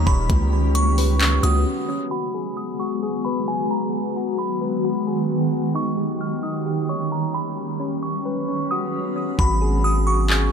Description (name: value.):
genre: hip hop, atmospheric cloud-rap.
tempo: 132 BPM.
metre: 4/4.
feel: half-time.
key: G# minor.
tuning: A4 = 443 Hz.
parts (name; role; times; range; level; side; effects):
glassy synth bell; melody; 0.0-10.5 s; G#5 to E#6; -28 LUFS; right 1 dB; chorus, digital delay.
granular cloud pad; sustained chords; 0.0-10.5 s; C#3 to G#4; -24 LUFS; equal; built-in reverb, sidechain pumping.
soft electric-piano-like synth keys; arpeggios; 0.0-10.5 s; C#4 to C#5; -29 LUFS; left 3 dB; chorus, digital delay.
long sustained 808-style bass; bass; 0.0-1.7, 9.4-10.5 s; D#1 to C#2; -19 LUFS; equal; none.
smooth R&B drum kit; drums; 0.1-1.5, 9.4-10.4 s; handclaps, hi-hat, kick drum; -21 LUFS; equal; none.
room: light reverb.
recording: low-pass filter.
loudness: -20 LUFS.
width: side -7 dB against mid.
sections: 0.0-2.1 A section; 2.1-9.4 B section; 9.4-10.5 C section.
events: break 1.7-2.1; filter sweep 2.1-9.4; hi-hats muted 9.4-10.5.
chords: 0.3 C#7sus4; 2.1 G#m7; 5.8 D#7; 7.6 C#7sus4; 9.4 G#m7.